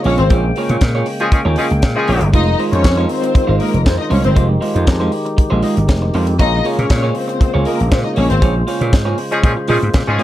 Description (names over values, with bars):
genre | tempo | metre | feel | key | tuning
disco | 118 BPM | 4/4 | straight | unclear | A4 = 440 Hz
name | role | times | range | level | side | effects
warm studio string section | second line | 0.0-8.4 s | Bb3 to Eb5 | -20 LUFS | left 3 dB | none
tonewheel organ | sustained chords | 0.0-10.2 s | Db3 to G5 | -22 LUFS | equal | slow rotary speaker
tight funk drum kit | drums | 0.0-10.2 s | hi-hat, kick drum, snare drum | -16 LUFS | equal | none
electric guitar at the edge of break-up | accompaniment | 0.1-10.2 s | Ab3 to Eb5 | -21 LUFS | right 3 dB | none
vintage slap bass | bass | 0.1-10.2 s | F1 to Bb2 | -16 LUFS | equal | none
clear horn section | stabs | 1.2-2.3, 9.3-10.2 s | F3 to Ab4 | -18 LUFS | left 1 dB | none
room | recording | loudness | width
studio ambience | dark, warm production | -12 LUFS | side -13 dB against mid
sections
0.0-10.2 A section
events
band accent 0.3-2.3, 8.4-10.2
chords
0.0 Bbm7; 2.3 Fm7; 6.4 Bbm7